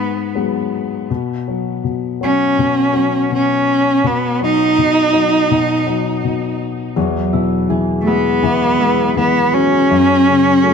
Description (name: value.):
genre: acoustic folk-pop ballad.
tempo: 82 BPM.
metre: 4/4.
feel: straight.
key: unclear.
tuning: A4 = 438 Hz.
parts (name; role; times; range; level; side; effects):
rich cello; melody; 0.0-10.7 s; A3 to D#4; -14 LUFS; right 1 dB; plate reverb, tape echo.
warm grand piano; accompaniment; 0.0-10.7 s; E2 to B3; -19 LUFS; left 7 dB; none.
concert harp; arpeggios; 7.0-10.7 s; F#3 to G#4; -19 LUFS; right 1 dB; none.
room: moderate studio reverb, RT60 0.7 s.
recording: none.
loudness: -13 LUFS.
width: side -6 dB against mid.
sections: 0.0-1.1 A section; 1.1-10.7 B section.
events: none.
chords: 0.0 G#m7; 1.1 Bsus2; 7.0 Eadd9; 9.9 F#madd9.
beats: 0.35 | 1.09 1.83 2.57 3.31 | 4.04 4.78 5.51 6.24 | 6.97 7.70 8.43 9.16 | 9.90 10.63.